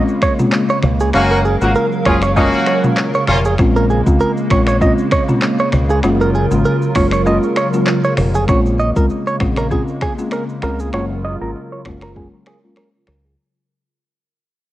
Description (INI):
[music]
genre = afrobeats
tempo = 98 BPM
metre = 4/4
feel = swing 55% on 16ths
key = Bb minor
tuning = A4 = 440 Hz
[part]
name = folk marimba with medium hard mallets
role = accompaniment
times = 0.0-12.8 s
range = Ab3 to F5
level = -19 LUFS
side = left 1 dB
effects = low-pass filter, cassette tape
[part]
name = hollow soft pad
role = sustained chords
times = 0.0-13.4 s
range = Db3 to F5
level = -21 LUFS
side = right 1 dB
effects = ensemble chorus, sidechain pumping, low-pass filter, cassette tape
[part]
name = direct-recorded clean electric guitar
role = riff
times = 0.0-13.3 s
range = Ab4 to Eb5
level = -20 LUFS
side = right 3 dB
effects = low-pass filter, cassette tape, tape echo
[part]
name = fingered electric bass with an envelope filter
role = bass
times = 0.0-13.3 s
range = F1 to Db2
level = -18 LUFS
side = equal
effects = none
[part]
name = afro-pop drum kit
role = drums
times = 0.1-13.2 s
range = finger snaps, handclaps, hi-hat, kick drum, rim click, shaker, toms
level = -19 LUFS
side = equal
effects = vintage 12-bit sampler grit
[part]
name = warm horn section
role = second line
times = 1.1-3.4 s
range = Bb3 to Bb4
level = -18 LUFS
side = equal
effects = cassette tape
[sound]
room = light reverb, digital ambience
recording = home recording on cassette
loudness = -13 LUFS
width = side -14 dB against mid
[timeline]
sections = 0.0-8.5 A section; 8.5-13.4 B section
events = kick muted 7.3-8.5; fade-out 8.5-13.4; filter sweep 8.5-13.4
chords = 0.0 Bbm7; 1.1 Gbmaj7; 3.6 Bbm7; 6.0 Gbmaj7; 8.5 Bbm7; 10.9 Gbmaj7